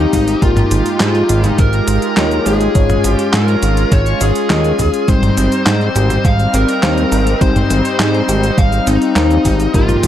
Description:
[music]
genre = synthwave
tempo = 103 BPM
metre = 4/4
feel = straight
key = unclear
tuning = A4 = 440 Hz
[part]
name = bluesy overdriven lead guitar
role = melody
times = 0.0-10.1 s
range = Eb4 to F5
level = -18 LUFS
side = left 2 dB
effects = distortion, ping-pong delay
[part]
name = brassy analog pad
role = sustained chords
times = 0.0-10.1 s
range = G3 to G4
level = -20 LUFS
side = right 1 dB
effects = chorus, sidechain pumping
[part]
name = mellow FM electric piano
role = stabs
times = 0.0-10.1 s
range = G3 to F5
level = -21 LUFS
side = left 4 dB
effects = chorus, digital delay
[part]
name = fat analog bass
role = bass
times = 0.0-10.1 s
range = Ab1 to Ab2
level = -15 LUFS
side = equal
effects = tube saturation
[part]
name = clean 12-bit digital drum machine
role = drums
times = 0.1-10.1 s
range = cabasa, handclaps, hi-hat, snare drum, toms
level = -19 LUFS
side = equal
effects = overdrive
[part]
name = electronic kick drum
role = drums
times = 0.1-9.9 s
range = none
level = -14 LUFS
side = equal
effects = overdrive
[part]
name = thumb-piano-like synth pluck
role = arpeggios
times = 5.1-10.1 s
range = F3 to C5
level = -21 LUFS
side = right 2 dB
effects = chorus, digital delay
[sound]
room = moderate plate reverb, RT60 1.3 s, digital ambience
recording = dark, warm production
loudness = -11 LUFS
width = side -11 dB against mid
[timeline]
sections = 0.0-10.1 A section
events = none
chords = 0.4 Ebadd9/Ab; 2.8 Db/Ab; 5.1 Cm/Ab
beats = | 0.42 1.00 1.59 2.17 | 2.75 3.33 3.92 4.50 | 5.08 5.67 6.25 6.83 | 7.41 8.00 8.58 9.16 | 9.74

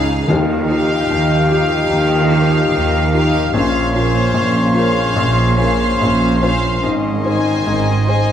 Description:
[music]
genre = cinematic, emotional film score for orchestra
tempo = 73 BPM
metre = 4/4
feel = rubato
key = unclear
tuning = A4 = 440 Hz
[part]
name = rich studio violin section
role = melody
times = 0.0-8.3 s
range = F5 to Ab5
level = -23 LUFS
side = left 2 dB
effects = none
[part]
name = rich studio violin section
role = second line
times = 0.0-8.3 s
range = G4 to C5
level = -26 LUFS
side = left 2 dB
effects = none
[part]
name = dark studio viola section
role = accompaniment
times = 0.0-8.3 s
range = Db4 to Eb4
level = -26 LUFS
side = left 1 dB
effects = none
[part]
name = felt-muted upright piano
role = accompaniment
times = 0.0-8.3 s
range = Ab1 to C5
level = -20 LUFS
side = left 3 dB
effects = none
[part]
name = mellow French horn section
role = sustained chords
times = 0.0-8.3 s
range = Db3 to G4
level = -22 LUFS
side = left 4 dB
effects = none
[part]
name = warm chamber double bass section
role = bass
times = 0.0-8.3 s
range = Ab1 to Eb2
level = -20 LUFS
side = right 2 dB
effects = none
[part]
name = warm studio cello section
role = bass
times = 0.0-8.3 s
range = Ab2 to Eb3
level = -20 LUFS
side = right 3 dB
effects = none
[part]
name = bright oboe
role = second line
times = 0.3-8.3 s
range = Db5 to F5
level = -24 LUFS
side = equal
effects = none
[part]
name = silver concert flute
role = second line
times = 0.3-8.2 s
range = G5 to C6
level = -26 LUFS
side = equal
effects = none
[part]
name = timpani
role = percussion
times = 0.3-1.5 s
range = Eb3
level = -21 LUFS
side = equal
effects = none
[sound]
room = moderate scoring stage reverb, RT60 1.9 s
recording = none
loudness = -13 LUFS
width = side -9 dB against mid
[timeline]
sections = 0.0-8.3 A section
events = none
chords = 0.3 Ebadd9; 3.5 Bbmadd9; 6.8 Ab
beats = | 0.27 1.08 1.90 2.72 | 3.54 4.35 5.16 5.99 | 6.83 7.65

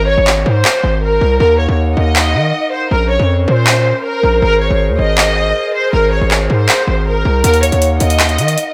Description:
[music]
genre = hip hop, trap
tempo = 159 BPM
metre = 4/4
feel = half-time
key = Eb dorian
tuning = A4 = 440 Hz
[part]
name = warm studio violin section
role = melody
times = 0.0-8.7 s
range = Bb4 to Eb5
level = -17 LUFS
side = equal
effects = delay
[part]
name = distorted 808-style bass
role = bass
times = 0.0-8.6 s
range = Ab1 to Eb3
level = -16 LUFS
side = equal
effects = distortion
[part]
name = booming analog drum machine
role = drums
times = 0.3-8.7 s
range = handclaps, hi-hat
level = -18 LUFS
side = equal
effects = none
[part]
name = hollow flute section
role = sustained chords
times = 1.4-8.7 s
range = Db4 to Gb5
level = -24 LUFS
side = equal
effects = none
[sound]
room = light reverb, studio reverb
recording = none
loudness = -13 LUFS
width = mono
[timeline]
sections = 0.0-8.7 A section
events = break 0.0-1.4; hi-hats muted 1.4-7.4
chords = 0.0 Abadd9; 1.4 Ebmadd9; 2.9 Bbmadd9; 4.4 Abadd9; 7.4 Ebmadd9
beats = 0.27 0.65 1.02 | 1.40 1.78 2.16 2.54 | 2.91 3.29 3.67 4.04 | 4.42 4.80 5.18 5.55 | 5.93 6.31 6.68 7.06 | 7.44 7.82 8.20 8.57

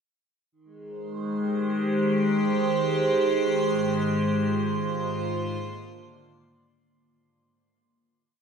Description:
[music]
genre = ambient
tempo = free time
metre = none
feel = none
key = Ab lydian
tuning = A4 = 440 Hz
[part]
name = evolving wavetable pad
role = sustained chords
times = 0.9-6.8 s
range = Ab2 to D5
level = -24 LUFS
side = equal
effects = phaser, built-in reverb
[part]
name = drifting glass-harmonics texture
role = texture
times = 1.5-6.9 s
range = C6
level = -37 LUFS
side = right 2 dB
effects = chorus, built-in reverb
[sound]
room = wet huge ambient reverb, RT60 7.3 s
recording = none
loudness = -23 LUFS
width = side -6 dB against mid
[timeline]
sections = 0.5-6.8 A section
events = fade-in on synth texture 0.5-6.8; fade-out 3.7-6.8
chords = 0.5 Abmaj7; 3.7 Fm7/Ab; 5.3 Bb/Ab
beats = free time

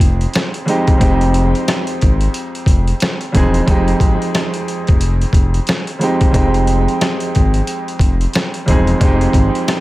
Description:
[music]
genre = hip hop, boom-bap hip-hop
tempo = 90 BPM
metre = 4/4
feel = swing 60% on 16ths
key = F minor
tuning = A4 = 440 Hz
[part]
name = warm baby grand piano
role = accompaniment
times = 0.0-9.8 s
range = F2 to Ab4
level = -18 LUFS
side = right 1 dB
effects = cassette tape, high-pass filter, low-pass filter, dub echo
[part]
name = smooth synth bass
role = bass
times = 0.0-9.5 s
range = E1 to Ab1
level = -15 LUFS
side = equal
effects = none
[part]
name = trip hop sampler-style drum kit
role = drums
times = 0.0-9.8 s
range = hi-hat, kick drum, rim click, snare drum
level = -15 LUFS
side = equal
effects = none
[sound]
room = digital ambience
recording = echo-heavy mix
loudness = -12 LUFS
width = side -18 dB against mid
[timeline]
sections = 0.0-9.8 A section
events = none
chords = 0.0 Fm7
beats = 0.34 | 1.01 1.68 2.34 3.01 | 3.68 4.34 5.01 5.68 | 6.34 7.01 7.68 8.34 | 9.01 9.68

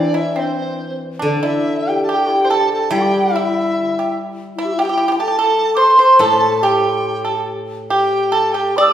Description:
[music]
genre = chinese traditional, Chinese chamber ensemble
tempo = 72 BPM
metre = 2/4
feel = rubato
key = unclear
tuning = A4 = 440 Hz
[part]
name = mellow large dizi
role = melody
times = 0.0-8.9 s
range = C5 to E6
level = -17 LUFS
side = equal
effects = none
[part]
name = low xiao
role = second line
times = 0.0-8.9 s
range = C4 to D5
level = -20 LUFS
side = left 3 dB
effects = none
[part]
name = pipa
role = second line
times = 0.0-8.9 s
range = C4 to D5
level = -19 LUFS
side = right 4 dB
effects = none
[part]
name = steel-string zither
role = accompaniment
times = 0.0-8.7 s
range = A2 to G3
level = -24 LUFS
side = left 1 dB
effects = none
[sound]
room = wet recital hall reverb, RT60 1.7 s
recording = heard from further back in the room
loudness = -14 LUFS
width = side -10 dB against mid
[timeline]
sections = 0.0-1.2 A section; 1.2-8.9 B section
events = none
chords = none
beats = 0.39 | 1.24 2.09 | 2.93 3.74 | 4.56 5.38 | 6.21 7.05 | 7.89 8.75

